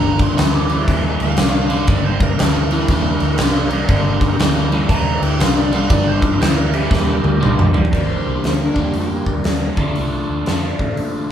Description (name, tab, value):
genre	blues rock power trio and southern rock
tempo	119 BPM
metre	4/4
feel	swing 64% on 8ths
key	G minor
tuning	A4 = 440 Hz
part	smooth overdriven lead guitar	second line	0.0-9.3 s	Bb3 to D6	-26 LUFS	right 6 dB	none
part	overdriven tonewheel organ	sustained chords	0.0-11.3 s	A3 to Bb4	-29 LUFS	right 3 dB	none
part	overdriven electric guitar	riff	0.0-11.3 s	G2 to D4	-20 LUFS	left 2 dB	phaser
part	vintage muted fingered electric bass	bass	0.0-11.2 s	G1 to Bb2	-21 LUFS	equal	none
part	big rock drum kit	drums	0.2-11.1 s	crash cymbal, hi-hat, kick drum, snare drum, toms	-18 LUFS	equal	none
part	fuzz lead guitar	melody	8.0-9.3 s	G4 to C5	-29 LUFS	right 1 dB	distortion
room	moderate large studio reverb, RT60 1.3 s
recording	band playing live in one room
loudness	-14 LUFS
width	side -9 dB against mid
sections	0.0-7.9 A section; 7.9-11.3 B section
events	drum fill 6.9-7.9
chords	0.0 Gm; 9.7 Dm